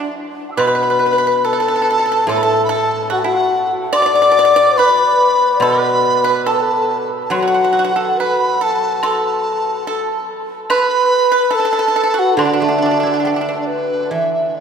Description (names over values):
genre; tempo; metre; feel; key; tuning
chinese traditional, Chinese chamber ensemble; 71 BPM; 2/4; rubato; D gong mode; A4 = 439 Hz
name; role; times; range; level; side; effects
mellow hollow large dizi; melody; 0.0-14.6 s; B4 to E6; -16 LUFS; equal; none
mellow hollow xiao; second line; 0.0-13.7 s; D4 to D5; -19 LUFS; left 3 dB; none
pipa; second line; 0.0-13.6 s; D4 to D5; -21 LUFS; right 4 dB; none
guzheng; accompaniment; 0.6-14.6 s; A2 to A4; -22 LUFS; right 1 dB; none
woodblock; percussion; 0.6-13.4 s; none; -29 LUFS; left 2 dB; none
room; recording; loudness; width
wet cathedral reverb, RT60 5.8 s; recorded in a church or concert hall; -13 LUFS; side -7 dB against mid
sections
0.6-14.1 A section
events
none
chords
none